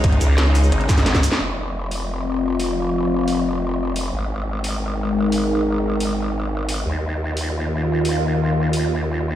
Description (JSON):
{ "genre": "dark technical drum and bass", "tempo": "176 BPM", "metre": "4/4", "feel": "straight", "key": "F minor", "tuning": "A4 = 441 Hz", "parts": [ { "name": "sweeping resonant pad", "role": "sustained chords", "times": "0.0-9.4 s", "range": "Db3 to Bb4", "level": "-22 LUFS", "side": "left 1 dB", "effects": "chorus, sidechain pumping" }, { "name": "growl bass", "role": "bass", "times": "0.0-9.4 s", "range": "F1 to Eb2", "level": "-22 LUFS", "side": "equal", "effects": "chorus, overdrive, sidechain pumping" }, { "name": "drum and bass drum kit", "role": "drums", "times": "0.0-8.8 s", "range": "hi-hat, rim click, shaker, snare drum", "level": "-25 LUFS", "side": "equal", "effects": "none" }, { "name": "electronic kick drum", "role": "drums", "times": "0.0-1.2 s", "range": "none", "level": "-16 LUFS", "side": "equal", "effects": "none" } ], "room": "moderate plate reverb, RT60 1.4 s", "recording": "played on a big sound system in a bare room, stone room reverb", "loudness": "-18 LUFS", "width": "side -12 dB against mid", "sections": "0.0-1.4 A section; 1.4-9.4 B section", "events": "drop 0.0-1.4; drum fill 0.9-1.4; band accent 1.3; filter sweep on analog synth pad 1.4-9.4", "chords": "0.0 Db5; 1.4 F5; 4.1 Ab5; 6.9 Eb5" }